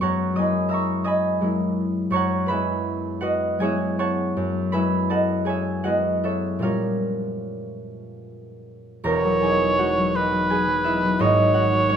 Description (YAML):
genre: classical, impressionist duo for cor anglais and harp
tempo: 47-58 BPM (dotted quarters)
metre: 6/8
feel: rubato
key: E lydian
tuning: A4 = 440 Hz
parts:
  - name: concert harp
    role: accompaniment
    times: 0.0-12.0 s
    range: E1 to E6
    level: -21 LUFS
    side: equal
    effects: none
  - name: clear cor anglais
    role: melody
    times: 9.1-12.0 s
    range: B4 to C#5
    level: -21 LUFS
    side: right 1 dB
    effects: none
room: moderate recital hall reverb, RT60 1.5 s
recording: close, detailed microphones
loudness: -20 LUFS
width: side -8 dB against mid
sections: 0.0-9.0 A section; 9.0-12.0 B section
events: none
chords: 0.0 F#13; 2.1 Eadd9/F#; 6.6 A#m6; 9.0 Emaj9; 11.2 G#m7